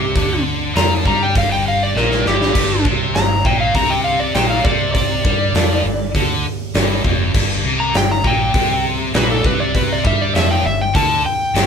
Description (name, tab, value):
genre	blues rock power trio and southern rock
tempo	100 BPM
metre	4/4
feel	straight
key	unclear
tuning	A4 = 440 Hz
part	overdriven slide guitar	melody	0.0-11.7 s	G4 to Bb5	-19 LUFS	left 1 dB	none
part	distorted electric guitar	riff	0.0-11.7 s	F2 to G3	-20 LUFS	left 2 dB	overdrive
part	vintage muted fingered electric bass	bass	0.0-11.7 s	F1 to G2	-22 LUFS	equal	none
part	big rock drum kit	drums	0.2-11.7 s	crash cymbal, hi-hat, kick drum, snare drum	-18 LUFS	right 1 dB	none
room	moderate studio reverb, RT60 0.5 s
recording	band playing live in one room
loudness	-14 LUFS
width	side -6 dB against mid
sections	0.0-11.7 A section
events	electric slide guitar solo 0.0-11.7; drum fill 2.0-2.6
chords	0.0 G5